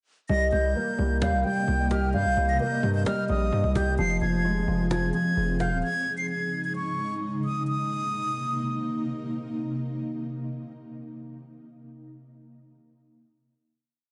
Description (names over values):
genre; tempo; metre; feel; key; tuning
hip hop, trap; 130 BPM; 4/4; half-time; C phrygian; A4 = 440 Hz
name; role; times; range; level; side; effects
breathy concert flute; melody; 0.3-9.0 s; Db6 to C7; -33 LUFS; equal; tape echo
hollow clarinet-like synth lead; second line; 0.3-3.9 s; Eb5 to G5; -32 LUFS; equal; chorus, tape echo
dark baby grand piano; accompaniment; 0.3-5.9 s; F3 to F5; -30 LUFS; equal; analog chorus
ethereal airy pad; sustained chords; 0.9-11.5 s; C3 to Eb5; -35 LUFS; equal; ensemble chorus, built-in reverb, tremolo
distorted 808-style bass; bass; 0.3-5.8 s; Eb1 to G2; -29 LUFS; equal; distortion
cajon; drums; 0.3-5.7 s; none; -36 LUFS; equal; none
room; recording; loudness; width
moderate lush hall reverb, RT60 1.8 s, small room ambience; dreamy mix soaked in reverb, nothing above 10.3 kHz; -27 LUFS; mono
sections
0.3-7.7 hook; 7.7-11.4 final chord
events
none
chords
0.3 Cm7; 4.0 Fm; 5.8 Dbsus2; 7.7 Cm7